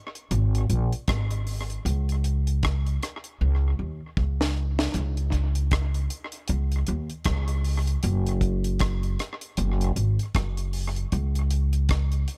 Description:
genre	roots reggae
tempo	78 BPM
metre	4/4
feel	swing 59% on 16ths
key	unclear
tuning	A4 = 439 Hz
part	deep reggae drum kit	drums	0.2-12.4 s	hi-hat, kick drum, rim click, snare drum	-32 LUFS	equal	tape echo
part	upright bass	bass	0.3-12.2 s	Gb1 to Eb2	-26 LUFS	equal	none
room	little or no reverb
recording	echo-heavy mix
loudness	-26 LUFS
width	mono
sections	0.0-4.9 A section; 4.9-12.4 B section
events	drum fill 3.4-4.9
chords	none

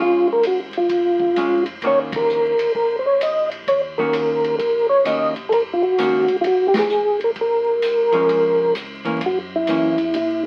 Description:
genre	soul jazz organ trio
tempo	130 BPM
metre	4/4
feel	swing 65% on 8ths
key	unclear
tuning	A4 = 439 Hz
part	percussive tonewheel organ	melody	0.0-10.4 s	Fb4 to Eb5	-19 LUFS	equal	slow rotary speaker, chorus vibrato
part	archtop guitar, miked and amplified	accompaniment	0.0-10.0 s	Eb3 to Gb4	-27 LUFS	equal	none
part	mellow tonewheel organ	bass	0.0-10.5 s	F1 to Bb2	-45 LUFS	equal	slow rotary speaker
part	swinging big-band drum kit	drums	0.4-10.3 s	hi-hat, kick drum, ride cymbal, snare drum	-33 LUFS	equal	none
room	light reverb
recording	very old 78 rpm record, vinyl crackle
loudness	-19 LUFS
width	mono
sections	0.0-10.5 A section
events	band accent 2.0, 6.7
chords	0.0 Bbm7; 1.8 Ebm7; 7.4 Bbm7; 9.2 Gb7

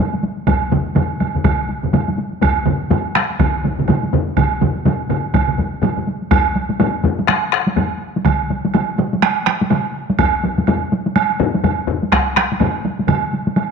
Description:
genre	japanese traditional, taiko drum ensemble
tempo	124 BPM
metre	4/4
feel	swing 60% on 16ths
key	none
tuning	none
part	taiko ensemble	percussion	0.1-13.7 s	none	-19 LUFS	left 1 dB	none
part	solo taiko drums	percussion	0.5-12.3 s	none	-22 LUFS	right 1 dB	none
part	taiko ensemble	percussion	0.5-13.2 s	none	-20 LUFS	left 7 dB	none
part	taiko ensemble	percussion	0.5-13.2 s	none	-21 LUFS	right 7 dB	none
part	woodblock	percussion	0.5-13.7 s	none	-23 LUFS	right 10 dB	none
room	wet echo chamber reverb, RT60 1.6 s, studio ambience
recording	1960s-style stereo with parts hard left and right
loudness	-15 LUFS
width	side -6 dB against mid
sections	0.0-6.3 A section; 6.3-13.7 B section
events	none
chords	none

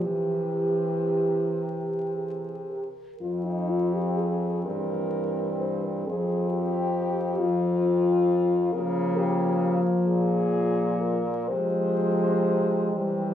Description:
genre	classical, lyrical piece for horn quartet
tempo	37-46 BPM (dotted quarters)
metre	6/8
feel	rubato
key	F minor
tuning	A4 = 443 Hz
part	mellow French horn	melody	0.0-13.3 s	Eb4 to C5	-29 LUFS	left 3 dB	none
part	warm French horn	second line	0.0-13.3 s	G3 to G4	-30 LUFS	right 2 dB	none
part	mellow French horn	accompaniment	0.0-13.3 s	E3 to F3	-28 LUFS	left 1 dB	none
part	clear French horn	bass	0.0-13.3 s	F2 to Db3	-31 LUFS	equal	none
room	moderate recital hall reverb, RT60 1.5 s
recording	recorded in a church or concert hall, vinyl crackle, small room ambience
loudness	-23 LUFS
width	side -10 dB against mid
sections	0.0-3.2 A section; 3.2-13.3 B section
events	none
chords	0.0 C; 3.2 F5; 4.7 C7/G; 6.1 F5; 8.7 Bbm/Db; 11.5 Fm/C

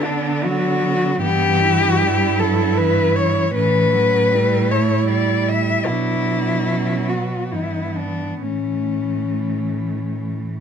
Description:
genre	classical, lyrical piece for cello ensemble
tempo	65-79 BPM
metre	3/4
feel	rubato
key	unclear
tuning	A4 = 439 Hz
part	dark cello	melody	0.0-10.2 s	C#4 to E5	-20 LUFS	left 5 dB	none
part	dark cello	second line	0.0-10.6 s	A3 to E4	-25 LUFS	right 14 dB	none
part	rich cello	accompaniment	0.0-10.6 s	D3 to A3	-25 LUFS	equal	none
part	warm cello	bass	0.0-10.6 s	G2 to D3	-22 LUFS	right 2 dB	none
room	light reverb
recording	minimal, uncompressed stereo recording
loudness	-16 LUFS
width	side -7 dB against mid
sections	0.0-10.6 A section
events	none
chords	0.0 Bm/D; 1.2 Em/G; 3.5 A9; 5.9 Bm; 7.5 Em7/G; 8.4 A

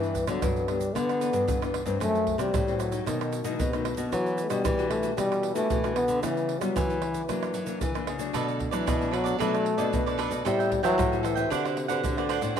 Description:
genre	samba and choro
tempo	114 BPM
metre	4/4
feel	straight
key	G major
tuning	A4 = 439 Hz
part	breathy trombone	melody	0.0-12.6 s	C3 to B3	-28 LUFS	left 1 dB	none
part	nylon-string guitar	accompaniment	0.0-12.6 s	F#2 to B4	-34 LUFS	left 11 dB	none
part	nylon-string guitar	bass	0.0-12.6 s	F#2 to G3	-31 LUFS	left 1 dB	none
part	tube shaker, pandeiro, surdo and tamborim	percussion	0.0-12.6 s	none	-33 LUFS	right 3 dB	none
part	cavaquinho	accompaniment	8.3-12.6 s	D4 to G5	-30 LUFS	right 7 dB	none
room	moderate echo chamber reverb, RT60 1.6 s, studio reverb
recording	1960s-style stereo with parts hard left and right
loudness	-24 LUFS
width	side -8 dB against mid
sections	0.0-12.6 A section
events	none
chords	0.0 G6; 2.0 F#m7b5; 3.1 B7; 4.1 Em9; 6.2 C#m7b5; 7.3 F#7b13; 8.3 Bm7; 10.5 Am7; 11.5 D13

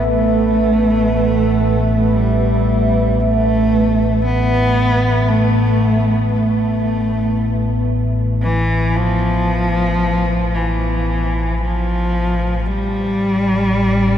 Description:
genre	dark ambient drone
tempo	free time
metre	none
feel	none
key	unclear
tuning	A4 = 440 Hz
part	dark cello	melody	0.0-14.2 s	E3 to B3	-18 LUFS	equal	diffuse ambient delay
part	deep dark ambient pad	sustained chords	0.0-12.7 s	A3 to E5	-21 LUFS	right 1 dB	chorus, built-in reverb
part	analog drone	drone	0.0-14.2 s	A1	-18 LUFS	equal	lush chorus
part	backwards swelling texture	texture	14.0-14.2 s	D5	-37 LUFS	left 2 dB	none
room	wet huge ambient reverb, RT60 7.9 s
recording	none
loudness	-14 LUFS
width	side -9 dB against mid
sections	0.0-12.7 A section; 12.7-14.2 B section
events	filter sweep on synth drone 0.0-12.7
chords	0.0 Asus2; 12.7 A5

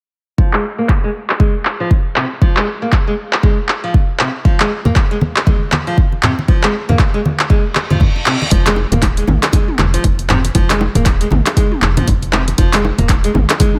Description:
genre	afro house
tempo	118 BPM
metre	4/4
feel	swing 59% on 16ths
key	F minor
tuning	A4 = 438 Hz
part	nylon-string guitar	arpeggios	0.4-13.7 s	C3 to Bb3	-23 LUFS	equal	sidechain pumping, low-pass filter, dub echo
part	electronic kick drum	drums	0.4-13.7 s	none	-15 LUFS	equal	overdrive, studio reverb
part	deep house drum kit	drums	0.5-13.8 s	handclaps, hi-hat, toms	-20 LUFS	equal	overdrive, low-pass filter on snare, studio reverb, low-pass filter on hats, low-pass filter on toms
part	congas	percussion	4.6-13.7 s	none	-20 LUFS	equal	none
part	reverse cymbal	sound effects	7.8-8.5 s	none	-26 LUFS	equal	none
part	woody FM bass	bass	8.5-13.5 s	Eb1 to Ab1	-19 LUFS	equal	tube saturation, sidechain pumping
part	bongos	percussion	8.5-13.7 s	none	-25 LUFS	equal	none
room	light reverb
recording	none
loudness	-14 LUFS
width	mono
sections	0.4-8.5 A section; 8.5-13.8 B section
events	filter sweep on nylon-string guitar 0.4-8.5; reverse cymbal 7.8-8.5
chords	0.4 Fm; 8.5 Fm7

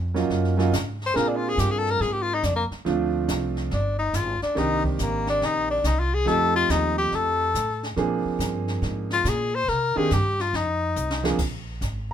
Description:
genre	jazz, small-group swing and bop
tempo	141 BPM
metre	4/4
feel	swing 66% on 8ths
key	Bb mixolydian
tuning	A4 = 440 Hz
part	upright bass	bass	0.0-12.1 s	G1 to C3	-27 LUFS	right 1 dB	none
part	warm baby grand piano	accompaniment	0.1-12.1 s	Eb3 to Ab4	-26 LUFS	right 4 dB	none
part	jazz brush drum kit	drums	0.2-12.1 s	brushed snare drum, crash cymbal, hi-hat, kick drum, snare drum	-33 LUFS	left 1 dB	none
part	breathy tenor saxophone	melody	1.1-11.3 s	G3 to C5	-23 LUFS	left 3 dB	none
room	light reverb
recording	minimal, uncompressed stereo recording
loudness	-22 LUFS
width	side -9 dB against mid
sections	0.0-11.4 A section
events	tenor saxophone solo 0.0-11.4; drum fill 11.0-11.4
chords	0.0 Ebm7; 1.2 Bb9; 2.9 Dm7; 3.7 Fm13/G; 4.6 Cm7; 6.3 F9; 8.0 Bb9; 9.7 Cm7; 10.5 F5; 11.4 Bb7(no3)

